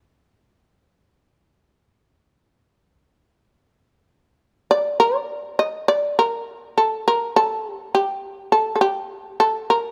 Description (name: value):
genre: japanese traditional, Japanese chamber music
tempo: 48-52 BPM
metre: 4/4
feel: rubato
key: D miyako bushi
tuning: A4 = 440 Hz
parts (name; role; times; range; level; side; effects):
- shamisen; solo; 0.0-9.9 s; D4 to Eb5; -21 LUFS; equal; none
room: light reverb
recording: close, detailed microphones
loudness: -21 LUFS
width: mono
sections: 0.0-4.7 A section; 4.7-9.9 B section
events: none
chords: none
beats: 1.08 2.25 3.48 | 4.71 5.91 7.10 8.27 | 9.43